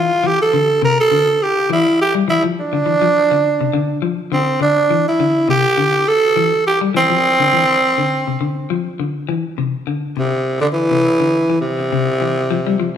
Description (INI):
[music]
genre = afrobeat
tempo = 103 BPM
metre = 4/4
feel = swing 55% on 16ths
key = C major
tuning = A4 = 440 Hz
[part]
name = growling tenor saxophone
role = melody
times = 0.0-13.0 s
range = C3 to Bb4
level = -14 LUFS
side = right 2 dB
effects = none
[part]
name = clean electric guitar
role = arpeggios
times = 0.0-12.9 s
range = C3 to G3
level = -20 LUFS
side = left 6 dB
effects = spring reverb
[sound]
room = wet large studio reverb, RT60 1.3 s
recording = band playing live in one room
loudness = -14 LUFS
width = side -8 dB against mid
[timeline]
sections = 0.0-9.6 A section; 9.6-13.0 B section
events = none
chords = 0.2 C; 2.6 N.C.; 4.9 C; 7.2 Cadd9; 9.6 C; 11.9 Cadd11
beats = | 0.24 0.82 1.41 1.99 | 2.58 3.16 3.74 4.33 | 4.91 5.50 6.08 6.66 | 7.25 7.83 8.42 9.00 | 9.59 10.17 10.76 11.34 | 11.93 12.52